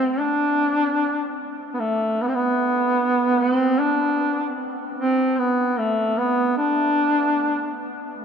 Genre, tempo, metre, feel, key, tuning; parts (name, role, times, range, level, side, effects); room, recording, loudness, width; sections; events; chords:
caucasian folk, Caucasian lament; 75 BPM; 4/4; rubato; A4 = 440 Hz
warm duduk; solo; 0.0-8.2 s; A3 to D4; -19 LUFS; equal
wet cathedral reverb, RT60 7.2 s; minimal, uncompressed stereo recording; -19 LUFS; side -7 dB against mid
0.0-8.2 A section